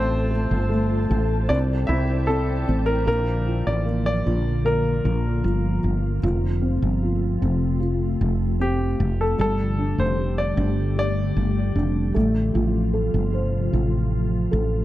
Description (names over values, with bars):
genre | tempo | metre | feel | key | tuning
pop ballad | 76 BPM | 4/4 | straight | F major | A4 = 439 Hz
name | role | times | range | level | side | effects
clear grand piano | melody | 0.0-12.1 s | C4 to E5 | -27 LUFS | left 1 dB | dub echo
felt-muted upright piano | accompaniment | 0.0-14.8 s | F3 to C5 | -28 LUFS | right 1 dB | none
glassy FM pad | sustained chords | 0.0-14.8 s | C3 to A5 | -27 LUFS | left 2 dB | ensemble chorus, built-in reverb
woody fretless electric bass | bass | 0.0-14.8 s | F1 to C2 | -22 LUFS | equal | none
room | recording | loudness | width
light reverb, small room ambience | echo-heavy mix | -20 LUFS | side -15 dB against mid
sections
0.0-3.1 A section; 3.1-14.8 B section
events
none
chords
0.0 F/A; 1.5 Cadd9; 3.1 Bb; 6.2 F; 9.4 Gsus2; 12.2 F